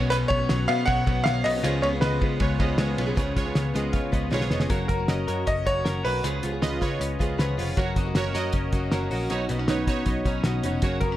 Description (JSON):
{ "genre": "jangly indie pop", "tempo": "157 BPM", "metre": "4/4", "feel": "straight", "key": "F# major", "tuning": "A4 = 440 Hz", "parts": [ { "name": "picked steel-string acoustic guitar", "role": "accompaniment", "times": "0.0-11.2 s", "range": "F#2 to G#4", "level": "-34 LUFS", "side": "right 3 dB", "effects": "none" }, { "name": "warm analog keys", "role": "accompaniment", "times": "0.0-11.2 s", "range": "D#4 to D#5", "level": "-32 LUFS", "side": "right 4 dB", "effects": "chorus" }, { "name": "direct-recorded clean electric guitar", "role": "arpeggios", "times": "0.0-11.2 s", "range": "B2 to B4", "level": "-30 LUFS", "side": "left 6 dB", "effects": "none" }, { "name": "vintage muted picked electric bass", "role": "bass", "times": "0.0-11.2 s", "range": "E#1 to C#3", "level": "-29 LUFS", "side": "equal", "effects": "none" }, { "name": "bright upright piano", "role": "melody", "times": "0.1-2.6, 4.9-6.4, 11.0-11.2 s", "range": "A#4 to F#5", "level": "-27 LUFS", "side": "equal", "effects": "digital delay" }, { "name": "cloth-damped thuddy drum kit", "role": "drums", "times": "0.1-11.1 s", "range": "hi-hat, kick drum, ride cymbal, snare drum", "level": "-28 LUFS", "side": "equal", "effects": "none" } ], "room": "light reverb", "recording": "none", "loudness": "-22 LUFS", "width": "side -13 dB against mid", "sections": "0.0-3.2 A section; 3.2-4.7 B section; 4.7-11.2 C section", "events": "drum fill 4.3-4.7", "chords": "0.0 Bsus2; 1.6 C#7; 4.7 F#; 6.2 C#7; 7.8 F#; 9.3 Badd9", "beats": "| 0.11 0.50 0.88 1.26 | 1.65 2.03 2.41 2.79 | 3.17 3.56 3.94 4.32 | 4.71 5.09 5.47 5.86 | 6.24 6.62 7.00 7.38 | 7.77 8.15 8.53 8.91 | 9.30 9.68 10.06 10.45 | 10.83" }